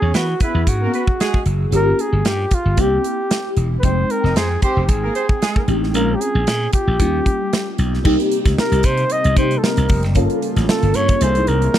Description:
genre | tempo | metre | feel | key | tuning
polished 1980s jazz-funk pop | 114 BPM | 4/4 | swing 54% on 16ths | unclear | A4 = 440 Hz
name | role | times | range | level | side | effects
warm flugelhorn | melody | 0.0-11.8 s | E4 to Eb5 | -22 LUFS | equal | tape echo
mellow horn section | second line | 0.0-5.6 s | Ab3 to Eb5 | -25 LUFS | right 4 dB | none
FM electric piano with soft pad layer | accompaniment | 0.0-11.8 s | G3 to G5 | -22 LUFS | left 2 dB | phaser, ensemble chorus
slap bass | bass | 0.0-11.7 s | E1 to E3 | -18 LUFS | equal | none
modern studio drum kit | drums | 0.1-11.8 s | crash cymbal, hi-hat, kick drum, snare drum | -19 LUFS | equal | none
chorused pulse-width pad | sustained chords | 8.1-11.8 s | C3 to F4 | -26 LUFS | right 1 dB | none
room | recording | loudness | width
studio ambience | dry, close 1970s-style studio recording | -15 LUFS | side -11 dB against mid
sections
0.0-8.1 A section; 8.1-11.8 B section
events
none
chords
0.0 E6; 1.7 Gm7b5; 2.8 C7; 3.8 Fm7; 5.9 Bbm7; 7.0 Eb7; 8.1 Cm7; 10.2 Gm7b5; 11.2 C7alt

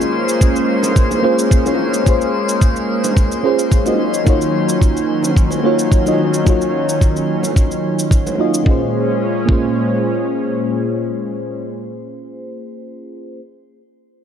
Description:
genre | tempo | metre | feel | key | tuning
sunset chillout | 109 BPM | 4/4 | swing 53% on 16ths | Bb minor | A4 = 436 Hz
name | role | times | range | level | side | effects
mellow FM electric piano | accompaniment | 0.0-13.4 s | Bb3 to Eb5 | -18 LUFS | moving between left 6 dB and right 5 dB | chorus, phaser, auto-pan, tape echo
lush unison pad | sustained chords | 0.0-11.6 s | Bb2 to Db4 | -20 LUFS | equal | chorus
shaker | drums | 0.0-8.6 s | none | -26 LUFS | equal | studio reverb
drifting glass-harmonics texture | texture | 0.0-8.7 s | C5 to C6 | -28 LUFS | left 2 dB | chorus, built-in reverb
electronic kick drum | drums | 0.4-9.7 s | none | -13 LUFS | equal | studio reverb
bongos | percussion | 0.8-8.4 s | none | -27 LUFS | right 3 dB | none
room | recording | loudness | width
moderate lush hall reverb, RT60 2.2 s | dark, warm production | -13 LUFS | side -8 dB against mid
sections
0.0-8.7 A section; 8.7-10.9 B section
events
none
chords
0.0 Bbm7; 4.0 Ebm7; 8.7 Bbm7

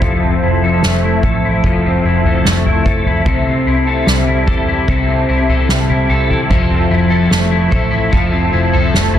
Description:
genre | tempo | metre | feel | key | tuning
dream pop | 74 BPM | 4/4 | straight | F major | A4 = 440 Hz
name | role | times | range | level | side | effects
lush unison pad | sustained chords | 0.0-9.2 s | F3 to A5 | -19 LUFS | right 3 dB | chorus, low-pass filter, plate reverb
electric guitar at the edge of break-up | arpeggios | 0.0-9.2 s | C3 to A4 | -16 LUFS | left 3 dB | ensemble chorus, low-pass filter, tape echo, plate reverb
vintage muted picked electric bass | bass | 0.0-9.2 s | F1 to E2 | -18 LUFS | equal | none
soft-mallet drum kit | drums | 0.0-9.2 s | kick drum, snare drum, toms | -17 LUFS | equal | none
room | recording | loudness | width
light reverb | dense, heavily limited modern master | -11 LUFS | side -10 dB against mid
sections
0.0-9.2 A section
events
none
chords
0.0 Fmaj7; 3.3 C6; 6.5 Fmaj7

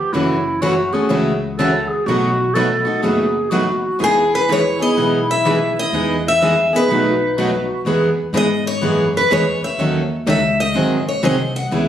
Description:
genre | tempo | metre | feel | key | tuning
acoustic string swing (jazz manouche) | 124 BPM | 4/4 | swing 64% on 8ths | E major | A4 = 440 Hz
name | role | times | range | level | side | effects
breathy clarinet | second line | 0.0-7.9 s | D#4 to A4 | -21 LUFS | right 2 dB | none
picked steel-string acoustic guitar | accompaniment | 0.1-11.9 s | B2 to A4 | -19 LUFS | left 2 dB | none
picked steel-string acoustic guitar | accompaniment | 0.1-11.9 s | B2 to B4 | -24 LUFS | right 6 dB | none
upright bass | bass | 0.1-11.9 s | F#1 to G#2 | -24 LUFS | equal | none
picked steel-string acoustic guitar | melody | 4.0-11.7 s | G#4 to F#5 | -18 LUFS | left 1 dB | none
room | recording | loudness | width
moderate studio reverb, RT60 0.6 s | recorded on a phone in the room, studio reverb, compression | -15 LUFS | side -10 dB against mid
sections
0.0-7.9 A section; 7.9-11.9 B section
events
steel-string acoustic guitar solo 7.9-11.9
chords
0.1 F#m7; 2.1 B7; 4.0 Emaj7; 6.9 B7; 7.9 Emaj7; 9.8 D#m7b5; 10.8 G#7

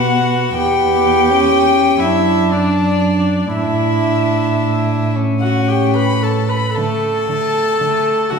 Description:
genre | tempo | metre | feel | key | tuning
classical, slow romantic movement for string quartet | 37-43 BPM (dotted quarters) | 6/8 | rubato | D major | A4 = 440 Hz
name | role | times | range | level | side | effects
rich violin | melody | 0.0-8.4 s | D5 to B5 | -19 LUFS | left 6 dB | none
rich violin | second line | 0.0-8.4 s | A3 to D4 | -20 LUFS | left 2 dB | none
warm viola | accompaniment | 0.0-8.4 s | D4 to B4 | -18 LUFS | right 3 dB | none
dark cello | bass | 0.0-8.4 s | E2 to D3 | -19 LUFS | right 2 dB | none
room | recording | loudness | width
wet recital hall reverb, RT60 1.6 s | recorded in a church or concert hall | -13 LUFS | side -5 dB against mid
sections
0.0-8.4 A section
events
none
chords
0.0 B5; 0.5 Em; 2.0 D/F#; 3.6 Asus4; 5.2 A; 6.8 D5

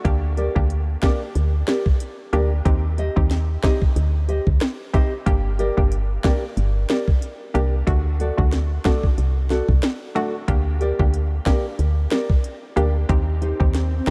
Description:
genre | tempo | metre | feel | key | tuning
dancehall | 92 BPM | 4/4 | swing 56% on 16ths | G harmonic minor | A4 = 441 Hz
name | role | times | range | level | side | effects
hollow square pluck | accompaniment | 0.0-14.1 s | A3 to G4 | -31 LUFS | equal | chorus
woody FM bass | bass | 0.0-14.0 s | G1 to Eb2 | -23 LUFS | equal | none
island pop drum kit | drums | 0.0-14.1 s | hi-hat, kick drum, rim click, snare drum | -22 LUFS | equal | vintage 12-bit sampler grit
nylon-string guitar | arpeggios | 0.4-14.1 s | Eb4 to Eb5 | -30 LUFS | equal | none
swell | sound effects | 13.6-14.1 s | none | -33 LUFS | equal | none
room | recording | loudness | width
light reverb | none | -21 LUFS | mono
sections
0.0-14.1 A section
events
swell 13.6-14.1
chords
0.0 Gm/D; 2.7 Cm/Eb; 5.3 Gm; 7.9 D; 10.5 Gm/D; 13.1 Cm/Eb

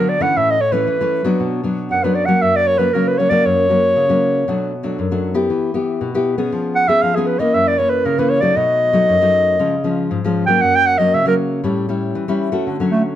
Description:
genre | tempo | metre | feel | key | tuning
samba | 117 BPM | 4/4 | straight | unclear | A4 = 441 Hz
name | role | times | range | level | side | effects
warm clarinet | melody | 0.0-13.0 s | A3 to G5 | -15 LUFS | right 1 dB | plate reverb
nylon-string guitar | accompaniment | 0.0-13.2 s | F#2 to G#4 | -18 LUFS | left 2 dB | none
room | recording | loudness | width
moderate small room reverb, RT60 0.5 s | none | -14 LUFS | side -11 dB against mid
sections
0.0-12.7 A section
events
clarinet solo 0.0-12.7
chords
0.4 A; 1.4 Bm; 2.4 F#; 4.5 Bm7; 5.5 Em; 6.5 C#7/E#; 7.5 F#7; 8.6 B7; 9.6 C#; 10.6 F#; 11.6 A7

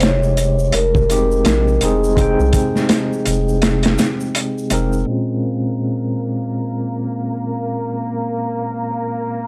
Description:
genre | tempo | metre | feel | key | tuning
trip hop | 83 BPM | 4/4 | swing 60% on 16ths | Bb dorian | A4 = 440 Hz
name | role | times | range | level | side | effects
vibraphone with soft mallets | melody | 0.0-4.7 s | Ab4 to Db5 | -23 LUFS | equal | tape echo
tine electric piano | accompaniment | 0.0-9.5 s | Bb2 to G5 | -23 LUFS | equal | tremolo, vintage 12-bit sampler grit, tape echo
round analog bass | bass | 0.0-5.0 s | F1 to C2 | -21 LUFS | equal | none
crunchy breakbeat drum kit | drums | 0.0-4.9 s | hi-hat, kick drum, snare drum | -20 LUFS | equal | none
tube shaker | percussion | 0.0-5.0 s | none | -38 LUFS | equal | none
warm chamber violin section | sustained chords | 5.1-9.5 s | Bb3 to Bb4 | -27 LUFS | equal | none
room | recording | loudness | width
small room ambience | dry, gritty hardware recording, transformer saturation, vinyl crackle, low-pass filter | -18 LUFS | mono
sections
0.0-5.1 A section; 5.1-9.5 B section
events
filter sweep 5.1-9.5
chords
0.0 Fm7; 5.1 Bbm9

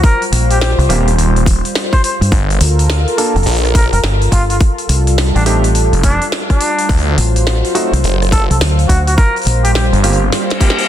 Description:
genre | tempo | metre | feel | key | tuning
glitch hop | 105 BPM | 4/4 | swing 63% on 16ths | unclear | A4 = 442 Hz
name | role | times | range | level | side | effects
mellow trumpet | melody | 0.0-9.9 s | D4 to C5 | -20 LUFS | equal | ping-pong delay
warm analog pad | sustained chords | 0.0-10.9 s | F#3 to C5 | -20 LUFS | equal | chorus, sidechain pumping
electronic kick drum | drums | 0.0-10.7 s | none | -11 LUFS | equal | none
glitchy drum kit | drums | 0.0-10.9 s | hi-hat, rim click, snare drum | -20 LUFS | left 1 dB | soft clipping on snare
deep dub fingered electric bass | bass | 0.3-9.9 s | F1 to G2 | -13 LUFS | equal | none
warm baby grand piano | stabs | 0.9-10.8 s | A3 to A4 | -20 LUFS | right 2 dB | vintage 12-bit sampler grit, sidechain pumping, ping-pong delay
phased detuned saw bass | bass | 0.9-10.3 s | Eb1 to D2 | -14 LUFS | equal | phaser
reverse cymbal | sound effects | 10.5-10.9 s | none | -17 LUFS | left 4 dB | none
room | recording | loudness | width
light reverb | dense, heavily limited modern master | -10 LUFS | side -11 dB against mid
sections
0.0-10.9 A section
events
drum fill 10.3-10.9; reverse cymbal 10.5-10.9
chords
0.0 Eb6; 2.3 Gm9; 4.6 Fadd9; 6.9 D7; 9.2 Eb6 (rootless)

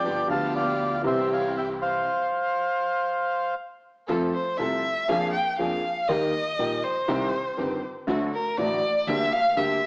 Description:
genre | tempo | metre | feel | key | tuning
tango | 120 BPM | 4/4 | rubato | F major from 4.1 s | A4 = 440 Hz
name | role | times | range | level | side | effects
bandoneon | melody | 0.0-3.5 s | C5 to A5 | -24 LUFS | equal | none
warm grand piano | accompaniment | 0.0-9.8 s | G1 to A4 | -27 LUFS | equal | none
warm studio string section | stabs | 0.0-9.8 s | A3 to A4 | -35 LUFS | equal | none
upright bass | bass | 0.0-9.8 s | G1 to F2 | -40 LUFS | equal | none
warm violin | second line | 4.3-9.9 s | Bb4 to G5 | -25 LUFS | equal | none
room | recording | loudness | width
wet large studio reverb, RT60 1.3 s | worn, warbling old tape, cassette tape, warbly pitch drift, small speaker sound | -23 LUFS | side -33 dB against mid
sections
0.0-4.1 A section; 4.1-9.9 B section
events
stop 2.1-4.1; violin solo 4.1-9.9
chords
0.1 G7; 1.0 C; 2.1 N.C.; 4.1 F; 5.1 Bb7/F; 6.1 Eb; 7.1 Cm; 8.1 D; 9.1 Gm/D

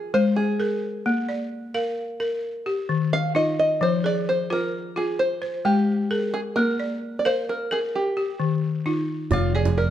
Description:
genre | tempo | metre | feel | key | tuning
west african traditional, West African string and xylophone music | 87 BPM (dotted quarters) | 12/8 | straight | F dorian | A4 = 440 Hz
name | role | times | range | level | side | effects
open-back banjo | melody | 0.0-9.9 s | F4 to F5 | -24 LUFS | right 1 dB | none
balafon | arpeggios | 0.1-9.9 s | Eb3 to F5 | -24 LUFS | left 2 dB | none
fingered electric bass | bass | 9.3-9.9 s | F1 | -22 LUFS | right 1 dB | none
djembe | percussion | 9.3-9.8 s | none | -26 LUFS | right 5 dB | none
room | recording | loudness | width
moderate recital hall reverb, RT60 1.4 s | dark, warm production | -22 LUFS | side -11 dB against mid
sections
0.0-9.3 A section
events
none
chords
0.0 Abadd9; 1.1 Bb; 2.4 Eb; 3.8 Fm; 5.2 Ab; 6.6 Bb; 7.9 Eb; 9.3 Fm

